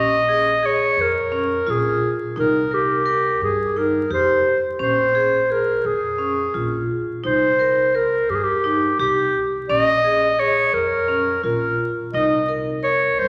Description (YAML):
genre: contemporary instrumental, chamber music in an uneven meter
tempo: 172 BPM (eighths)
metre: 7/8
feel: straight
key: Bb dorian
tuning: A4 = 440 Hz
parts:
  - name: clear clarinet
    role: melody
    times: 0.0-13.3 s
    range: G4 to Eb5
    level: -20 LUFS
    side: equal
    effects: none
  - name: vibraphone with hard mallets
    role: arpeggios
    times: 0.0-13.2 s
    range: Db4 to Bb4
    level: -27 LUFS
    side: equal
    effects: none
  - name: upright bass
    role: bass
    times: 0.0-13.3 s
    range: Bb1 to G2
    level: -34 LUFS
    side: equal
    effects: none
room: wet scoring stage reverb, RT60 2.0 s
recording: vinyl crackle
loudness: -20 LUFS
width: mono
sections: 0.0-13.3 A section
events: none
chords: 0.0 Bbm7; 2.4 Cm7; 4.8 Bbm7; 7.2 Cm7; 9.7 Bbm7; 12.1 Cm7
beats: 0.28 0.63 0.98 1.32 1.67 2.02 | 2.37 2.71 3.06 3.41 3.76 4.10 4.45 | 4.80 5.15 5.50 5.84 6.19 6.54 6.89 | 7.24 7.59 7.94 8.29 8.64 8.99 9.34 | 9.69 10.04 10.38 10.73 11.09 11.44 11.79 | 12.14 12.49 12.84 13.19